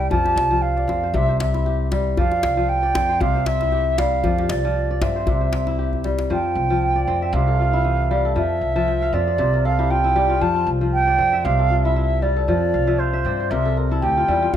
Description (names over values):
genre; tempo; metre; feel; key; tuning
west african traditional, West African string and xylophone music; 116 BPM; 4/4; swing 55% on 16ths; F major; A4 = 438 Hz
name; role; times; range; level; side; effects
mellow wooden flute; melody; 0.0-14.6 s; C5 to A5; -21 LUFS; right 3 dB; none
kora; arpeggios; 0.0-14.6 s; C3 to A5; -24 LUFS; left 4 dB; none
upright bass; bass; 0.0-14.6 s; C2 to G2; -22 LUFS; equal; none
djembe; percussion; 0.1-6.3, 14.5-14.6 s; none; -25 LUFS; left 1 dB; none
room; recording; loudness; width
light reverb; none; -17 LUFS; side -10 dB against mid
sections
0.0-6.3 A section; 6.3-14.6 A section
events
drum fill 5.9-6.3; kora fill 8.7-10.4, 12.7-14.5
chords
0.1 F; 1.1 C; 2.2 F5; 3.2 C; 4.2 F5; 5.3 C; 6.3 F5; 7.3 C